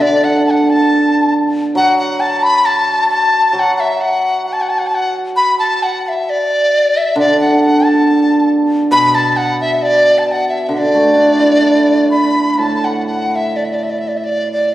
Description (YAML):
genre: chinese traditional, Chinese chamber ensemble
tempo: 62-69 BPM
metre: 2/4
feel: rubato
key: D gong mode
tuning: A4 = 440 Hz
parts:
  - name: hollow large dizi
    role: melody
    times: 0.0-14.7 s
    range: D5 to B5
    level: -13 LUFS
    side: left 1 dB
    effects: none
  - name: hammered dulcimer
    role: accompaniment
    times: 0.0-14.7 s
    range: A2 to A4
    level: -15 LUFS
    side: right 1 dB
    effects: none
room: wet concert hall reverb, RT60 2.0 s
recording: recorded on a phone in the room, club reverb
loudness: -11 LUFS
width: side -14 dB against mid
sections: 0.0-12.6 A section; 12.6-14.7 B section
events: none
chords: none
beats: | 0.01 0.90 | 1.77 2.66 | 3.55 4.45 | 5.37 6.28 | 7.17 8.05 | 8.93 9.81 | 10.71 11.64 | 12.60 13.56 | 14.51